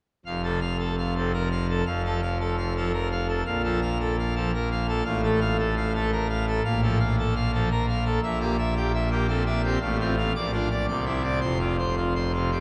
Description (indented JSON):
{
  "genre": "classical, organ toccata",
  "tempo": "113 BPM",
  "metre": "3/4",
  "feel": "straight",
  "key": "F major",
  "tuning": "A4 = 439 Hz",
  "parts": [
    { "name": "pipe organ, full organ", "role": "solo", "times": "0.3-12.6 s", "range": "F1 to F5", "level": "-26 LUFS", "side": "equal", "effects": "none" }
  ],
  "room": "wet cathedral reverb, RT60 4.9 s",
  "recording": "none",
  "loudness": "-26 LUFS",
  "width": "mono",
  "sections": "0.3-12.6 A section",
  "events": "none",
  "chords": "0.3 F; 1.9 Fadd11; 3.5 Bb5; 5.1 F/A; 6.6 Bb5; 8.2 C7/Bb; 9.8 F/A; 10.3 Bb; 10.9 Cadd9; 11.4 F5"
}